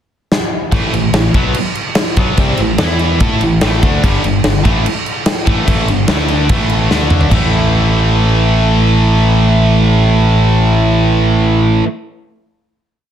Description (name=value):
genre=hard rock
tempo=146 BPM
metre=4/4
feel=straight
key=unclear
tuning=A4 = 441 Hz
part: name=big rock drum kit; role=drums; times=0.3-7.4 s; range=crash cymbal, kick drum, snare drum, toms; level=-14 LUFS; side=equal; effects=none
part: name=tight distorted guitar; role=riff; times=0.7-11.9 s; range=G2 to A4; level=-16 LUFS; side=right 1 dB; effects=distortion
part: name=tight distorted guitar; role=riff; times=0.7-11.9 s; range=G2 to A4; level=-18 LUFS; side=right 1 dB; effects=distortion
part: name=growling fingered electric bass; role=bass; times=0.7-11.8 s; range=G1 to A2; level=-14 LUFS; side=equal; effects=overdrive
room=small room ambience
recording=dense, heavily limited modern master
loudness=-10 LUFS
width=side -10 dB against mid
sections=0.0-0.7 pickup bar; 0.7-7.3 riff; 7.3-10.6 final chord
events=drum fill 0.3-0.7, 6.9-7.3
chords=0.0 N.C.; 0.7 Am; 2.8 E5; 3.2 A5; 4.0 G5; 6.1 D5; 6.5 A5; 6.9 D5; 7.3 A5